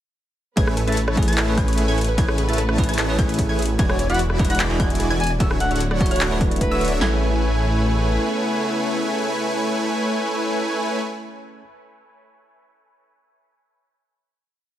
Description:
future bass; 149 BPM; 4/4; half-time; A major; A4 = 440 Hz
bell-like tine electric piano; accompaniment; 0.6-11.7 s; G#3 to E5; -28 LUFS; right 2 dB; wide subtle chorus, sidechain pumping, dub echo
dark studio string section; sustained chords; 0.6-11.0 s; C#3 to C#5; -33 LUFS; left 1 dB
wide unison pluck; arpeggios; 0.6-11.6 s; E6 to B6; -33 LUFS; right 1 dB; sidechain pumping
wide unison pluck; arpeggios; 0.6-7.2 s; F#4 to D5; -34 LUFS; right 3 dB
supersaw chords; riff; 0.6-11.0 s; D3 to B5; -24 LUFS; equal; sidechain pumping
wide detuned saw bass; bass; 0.6-8.2 s; D1 to A1; -23 LUFS; equal; chorus, sidechain pumping
big-room dance drum kit; drums; 0.6-7.1 s; handclaps, kick drum, snare drum; -22 LUFS; equal; overdrive
trap drum kit; drums; 0.6-7.0 s; handclaps, hi-hat, rim click; -27 LUFS; left 1 dB
clear alto saxophone; melody; 3.9-6.9 s; B4 to G#5; -27 LUFS; left 1 dB; sidechain pumping, tape echo
light reverb; -18 LUFS; side -12 dB against mid
0.6-7.0 drop; 7.0-10.2 final chord
drop 0.6-7.0
0.6 Amaj9; 3.8 E9; 5.4 Dmaj9; 7.0 Amaj9
| 0.57 0.97 1.37 1.78 | 2.18 2.58 2.98 3.39 | 3.79 4.19 4.60 5.00 | 5.40 5.80 6.21 6.61 | 7.01 7.41 7.82 8.22 | 8.62 9.03 9.43 9.83

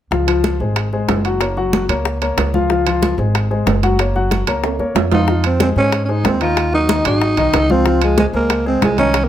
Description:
Afro-Cuban jazz; 186 BPM; 4/4; straight; A4 = 441 Hz
warm concert grand piano; accompaniment; 0.1-9.2 s; Eb3 to Gb5; -19 LUFS; left 4 dB
upright bass; bass; 0.1-9.3 s; Gb1 to Ab2; -19 LUFS; right 1 dB
bongos; percussion; 0.1-9.3 s; -23 LUFS; left 7 dB
congas; percussion; 0.1-9.3 s; -23 LUFS; right 1 dB
timbales; percussion; 0.3-9.3 s; -22 LUFS; right 10 dB
growling alto saxophone; melody; 5.1-9.3 s; Ab3 to F4; -17 LUFS; right 2 dB; plate reverb
light reverb; -14 LUFS; side -11 dB against mid
0.1-5.3 A section; 5.3-9.3 B section
drum fill 4.6-5.3
0.1 Dbmaj7; 1.4 Gb; 2.7 Dbmaj7; 4.0 Gb; 5.3 Fm7; 6.6 Ebm; 7.2 Ab6; 7.9 Dbmaj9
| 0.12 0.44 0.76 1.09 | 1.41 1.73 2.06 2.38 | 2.70 3.02 3.35 3.67 | 3.99 4.31 4.64 4.96 | 5.28 5.60 5.92 6.25 | 6.57 6.89 7.21 7.54 | 7.86 8.18 8.50 8.82 | 9.14

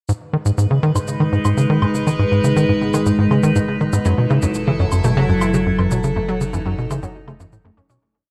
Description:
ambient, sequencer-driven space music; 121 BPM; 4/4; straight; F# dorian; A4 = 439 Hz
evolving wavetable pad; sustained chords; 0.1-8.0 s; F#3 to B4; -23 LUFS; equal; phaser, built-in reverb
tight sequencer bass; riff; 0.1-8.0 s; F#2 to D#3; -20 LUFS; equal; tape echo
analog drone; bass; 1.2-8.0 s; F#1 to G#1; -33 LUFS; equal; chorus
cabasa and woodblock; percussion; 0.1-8.0 s; -33 LUFS; equal; overdrive, tape echo
unison pluck; arpeggios; 0.2-8.0 s; D#3 to C#4; -32 LUFS; equal; tape echo
moderate plate reverb, RT60 2.7 s; cassette tape; -18 LUFS; mono
0.1-8.0 A section
fade-in on synth arpeggio sound 0.1-8.0; fade-in on synth drone 0.1-8.0; fade-out 5.4-8.0
0.1 G#m; 4.1 F#m7
| 0.09 0.58 1.08 1.57 | 2.07 2.56 3.06 3.56 | 4.05 4.55 5.04 5.54 | 6.04 6.53 7.03 7.52

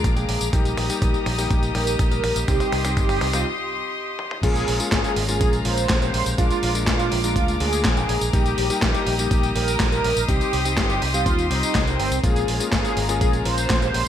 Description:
italo disco; 123 BPM; 4/4; straight; A4 = 441 Hz
mellow synth brass; melody; 0.0-14.1 s; C4 to C5; -26 LUFS; right 1 dB; chorus, cassette tape, ping-pong delay
bright chamber string section; sustained chords; 0.0-14.1 s; Ab3 to Eb6; -29 LUFS; left 2 dB; low-pass filter
warm electric grand piano; stabs; 0.0-14.1 s; G3 to G5; -28 LUFS; left 3 dB; low-pass filter
fingered electric bass with an envelope filter; bass; 0.0-14.1 s; G1 to Bb2; -26 LUFS; equal
dusty soul sampler-style drum kit; drums; 0.0-14.0 s; crash cymbal, handclaps, hi-hat, snare drum, tambourine, toms; -26 LUFS; equal; overdrive, high-pass filter on hats, studio reverb, high-pass filter on perc, high-pass filter on snare, high-pass filter on toms, high-pass filter on cymbals, gated reverb
electronic kick drum; drums; 0.0-13.8 s; -23 LUFS; equal; overdrive, studio reverb
digital ambience; -19 LUFS; side -10 dB against mid
0.0-4.4 A section; 4.4-14.1 B section
drum fill 0.0-3.5, 4.2; filter sweep on analog polysynth 0.0-4.4; break 3.5-4.4
0.0 Bb7; 0.5 Eb/Bb; 2.5 Cm; 4.4 Bbm7; 6.4 Bb7; 8.3 Eb/Bb; 10.3 Cm; 12.2 Bbm7
0.04 | 0.53 1.02 1.50 1.99 | 2.48 2.97 3.46 3.94 | 4.43 4.92 5.41 5.90 | 6.38 6.87 7.36 7.85 | 8.34 8.82 9.31 9.80 | 10.29 10.77 11.26 11.75 | 12.24 12.72 13.21 13.70

